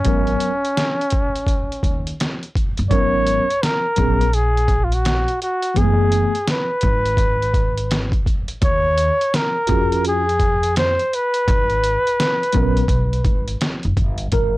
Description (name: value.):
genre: hip hop, jazz-hop.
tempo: 84 BPM.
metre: 4/4.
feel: swing 65% on 16ths.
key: G# minor.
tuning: A4 = 440 Hz.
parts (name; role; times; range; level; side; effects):
breathy flugelhorn; melody; 0.0-13.6 s; C#4 to C#5; -20 LUFS; equal; none.
mellow tine electric piano; accompaniment; 0.0-14.6 s; E3 to A#4; -20 LUFS; equal; medium stereo tremolo.
upright bass; bass; 0.0-14.6 s; F#1 to E#2; -21 LUFS; equal; none.
trip hop sampler-style drum kit; drums; 0.0-14.5 s; hi-hat, kick drum, snare drum; -21 LUFS; equal; overdrive.
room: little or no reverb.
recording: dry, gritty hardware recording, cassette tape.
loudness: -16 LUFS.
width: side -18 dB against mid.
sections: 0.0-2.9 A section; 2.9-14.3 B section.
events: none.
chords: 0.0 G#m11; 5.8 F#m11; 8.6 D#m11; 11.5 G#m11.